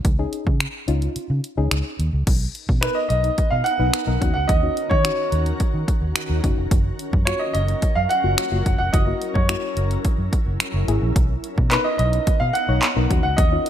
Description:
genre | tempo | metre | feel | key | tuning
dance-pop | 108 BPM | 4/4 | straight | F# major | A4 = 441 Hz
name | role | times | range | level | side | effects
vintage muted fingered electric bass | bass | 0.0-13.6 s | E#1 to D#3 | -22 LUFS | equal | sidechain pumping
punchy analog drum machine | drums | 0.0-13.7 s | crash cymbal, finger snaps, handclaps, hi-hat, kick drum | -21 LUFS | equal | none
soft round pluck | accompaniment | 0.2-13.7 s | A#3 to C#5 | -29 LUFS | left 7 dB | chorus, sidechain pumping
shimmering ambient pad | sustained chords | 3.0-13.7 s | D#3 to A#4 | -31 LUFS | right 1 dB | chorus, built-in reverb, sidechain pumping
warm baby grand piano | melody | 2.8-13.7 s | B4 to F#5 | -23 LUFS | right 1 dB | lush chorus, ping-pong delay
room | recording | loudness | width
light reverb | bright 1980s-style digital production | -18 LUFS | side -10 dB against mid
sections
0.0-2.3 A section; 2.3-13.7 B section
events
kick muted 1.2-2.3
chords
0.0 C#add9; 2.3 Bmaj7; 4.2 D#m7; 6.7 F#maj7; 8.9 F#7; 11.2 Bmaj7; 13.1 D#m7

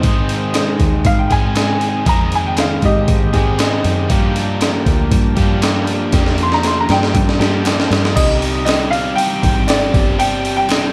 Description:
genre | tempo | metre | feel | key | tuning
indie rock | 118 BPM | 4/4 | straight | C minor | A4 = 437 Hz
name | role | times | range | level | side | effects
clear upright piano | melody | 0.0-10.9 s | Eb4 to C6 | -22 LUFS | equal | slapback echo, tape echo
combo organ | sustained chords | 0.0-8.1 s | C3 to G4 | -32 LUFS | equal | none
crunchy overdriven guitar | riff | 0.0-10.9 s | Eb3 to Ab4 | -22 LUFS | equal | none
overdriven picked electric bass | bass | 0.0-10.9 s | G1 to Ab2 | -22 LUFS | equal | none
breakbeat sampler-style drum kit | drums | 0.0-10.8 s | crash cymbal, hi-hat, kick drum, snare drum | -19 LUFS | equal | none
group handclap | percussion | 0.5-10.8 s | none | -33 LUFS | equal | none
room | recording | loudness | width
light reverb, digital ambience | none | -15 LUFS | mono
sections
0.0-8.2 A section; 8.2-10.9 B section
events
upright piano solo 0.0-8.2; drum fill 6.1-8.2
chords
0.0 Ab; 4.1 Gm7; 8.2 Cm; 9.9 Gsus4

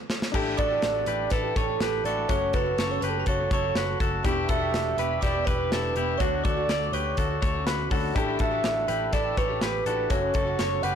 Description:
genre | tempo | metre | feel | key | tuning
jangly indie pop | 123 BPM | 4/4 | straight | unclear | A4 = 440 Hz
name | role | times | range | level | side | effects
modern studio drum kit | drums | 0.1-10.9 s | crash cymbal, hi-hat, kick drum, snare drum | -29 LUFS | equal | none
picked twelve-string acoustic guitar | accompaniment | 0.3-11.0 s | F#2 to G4 | -35 LUFS | right 6 dB | none
warm upright piano | accompaniment | 0.3-11.0 s | A3 to B5 | -35 LUFS | left 7 dB | none
vintage muted picked electric bass | bass | 0.3-11.0 s | E1 to D2 | -32 LUFS | left 1 dB | tube saturation
direct-recorded clean electric guitar | arpeggios | 0.4-11.0 s | C#4 to D5 | -30 LUFS | left 7 dB | slapback echo
hollow clarinet-like synth lead | melody | 0.6-11.0 s | A4 to F#5 | -28 LUFS | right 4 dB | chorus, slapback echo
glockenspiel with brass mallets | second line | 0.6-11.0 s | A5 to F#6 | -36 LUFS | right 9 dB | slapback echo
room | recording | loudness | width
light reverb | blown-out, overdriven recording, overdrive | -23 LUFS | side -8 dB against mid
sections
0.3-11.0 A section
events
drum fill 0.0-0.3; stop 0.0-0.3; upright piano fill 7.4-8.2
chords
0.3 A7sus4; 2.3 F#m; 4.2 Em7; 6.2 Dmaj7; 8.2 A7sus4; 10.1 F#m

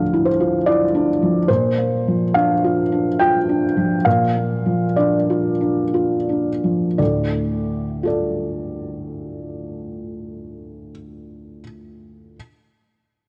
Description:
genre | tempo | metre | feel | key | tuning
neoclassical minimalist piano | 56-75 BPM | 3/4 | rubato | D minor | A4 = 441 Hz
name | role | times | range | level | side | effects
felt-muted upright piano | solo | 0.0-12.4 s | D2 to G5 | -20 LUFS | equal | cassette tape
room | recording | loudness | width
light reverb | home recording on cassette | -19 LUFS | mono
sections
0.0-7.0 A section; 7.0-10.1 B section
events
slowing down 0.3-7.0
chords
0.0 Dmadd9; 1.5 Bbadd9; 7.0 Dm

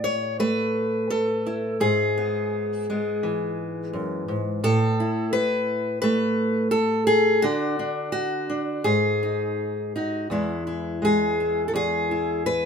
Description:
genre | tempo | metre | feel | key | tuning
folk, solo fingerstyle acoustic guitar | 85 BPM | 4/4 | straight | unclear | A4 = 444 Hz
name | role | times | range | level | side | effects
fingerpicked steel-string acoustic guitar | solo | 0.0-12.7 s | E2 to C#5 | -22 LUFS | equal | none
room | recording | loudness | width
light reverb | minimal, uncompressed stereo recording | -22 LUFS | side -6 dB against mid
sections
0.0-10.3 A section; 10.3-12.7 B section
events
none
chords
0.0 Asus2; 1.8 E/G#; 4.6 Asus2; 7.4 N.C.; 8.9 G#5; 10.3 E

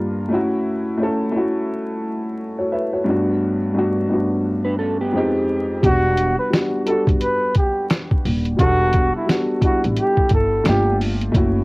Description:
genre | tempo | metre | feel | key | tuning
lo-fi hip hop | 87 BPM | 4/4 | swing 60% on 16ths | E dorian | A4 = 443 Hz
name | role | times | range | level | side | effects
dark upright piano | accompaniment | 0.0-11.6 s | F2 to E5 | -20 LUFS | equal | cassette tape, low-pass filter
mellow electric guitar | second line | 4.6-5.3 s | B3 to B4 | -24 LUFS | right 1 dB | analog chorus, low-pass filter, tape echo
trumpet with bucket mute | melody | 5.8-11.0 s | E4 to B4 | -20 LUFS | equal | low-pass filter, cassette tape, tape echo
upright bass | bass | 5.8-11.6 s | D#1 to A1 | -21 LUFS | equal | none
lo-fi sampler-style drum kit | drums | 5.8-11.5 s | hi-hat, kick drum, snare drum | -19 LUFS | equal | cassette tape
room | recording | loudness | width
light reverb | home recording on cassette, vinyl crackle | -17 LUFS | side -24 dB against mid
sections
0.0-11.6 A section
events
none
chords
0.3 F#m7; 3.1 Gmaj9; 5.1 Fm9; 5.8 Em9; 10.7 Gm7

